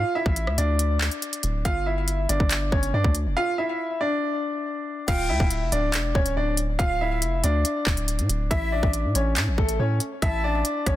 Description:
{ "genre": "hip hop, drill", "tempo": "140 BPM", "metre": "4/4", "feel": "half-time", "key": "D harmonic minor", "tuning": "A4 = 440 Hz", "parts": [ { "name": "clear grand piano", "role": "melody", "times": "0.0-11.0 s", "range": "A3 to F5", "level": "-26 LUFS", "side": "equal", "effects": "ping-pong delay" }, { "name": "long sustained 808-style bass", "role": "bass", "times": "0.0-11.0 s", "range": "D1 to A2", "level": "-25 LUFS", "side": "equal", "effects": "none" }, { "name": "drill drum kit", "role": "drums", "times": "0.3-11.0 s", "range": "crash cymbal, handclaps, hi-hat, kick drum, rim click", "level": "-24 LUFS", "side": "equal", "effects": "none" }, { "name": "reedy concert flute", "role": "second line", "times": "5.1-10.6 s", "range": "E5 to A5", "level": "-33 LUFS", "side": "left 3 dB", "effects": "ping-pong delay" } ], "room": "little or no reverb", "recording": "dense, heavily limited modern master", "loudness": "-22 LUFS", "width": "side -14 dB against mid", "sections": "0.0-5.1 A section; 5.1-11.0 B section", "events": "break 3.4-5.1", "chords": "0.0 D5; 1.7 G5; 5.1 Dm; 8.5 A" }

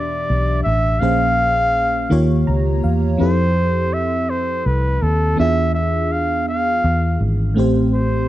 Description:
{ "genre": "slow six-eight R&B", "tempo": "55 BPM (dotted quarters)", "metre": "6/8", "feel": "straight", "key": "unclear", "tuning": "A4 = 438 Hz", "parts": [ { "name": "warm flugelhorn", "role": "melody", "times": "0.0-8.3 s", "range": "A4 to F5", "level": "-20 LUFS", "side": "equal", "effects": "none" }, { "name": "FM electric piano with soft pad layer", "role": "accompaniment", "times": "0.0-8.3 s", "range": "A2 to Bb5", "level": "-21 LUFS", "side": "equal", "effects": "chorus" }, { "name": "vintage muted fingered electric bass", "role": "bass", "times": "0.0-8.3 s", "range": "G#1 to F2", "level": "-19 LUFS", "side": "equal", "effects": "none" } ], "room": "studio reverb", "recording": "dry, close 1970s-style studio recording", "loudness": "-15 LUFS", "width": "side -14 dB against mid", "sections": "0.0-8.3 A section", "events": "FM electric piano fill 2.1-3.2", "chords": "0.0 Em7; 1.0 Bbm7; 2.1 Eb9; 3.2 Fmaj9; 5.4 E7b9; 7.6 Am7" }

